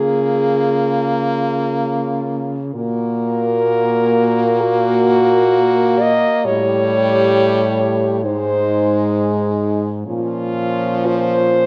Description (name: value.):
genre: classical, lyrical piece for horn quartet.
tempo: free time.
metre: none.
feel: none.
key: unclear.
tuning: A4 = 440 Hz.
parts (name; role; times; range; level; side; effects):
mellow French horn; melody; 0.0-11.7 s; F4 to Eb5; -20 LUFS; equal; none.
warm French horn; second line; 0.0-11.7 s; Db4 to G4; -27 LUFS; equal; none.
warm French horn; accompaniment; 0.0-11.7 s; F3 to Bb3; -22 LUFS; equal; none.
mellow French horn; bass; 0.0-11.7 s; Ab2 to Db3; -23 LUFS; equal; none.
room: moderate concert hall reverb, RT60 1.9 s.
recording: dark, warm production.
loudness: -17 LUFS.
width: mono.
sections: 0.0-11.7 A section.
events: none.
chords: 0.0 Bbm/Db; 2.7 Gb/Bb; 6.5 A7; 8.3 Ab; 10.1 Bbm.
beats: free time.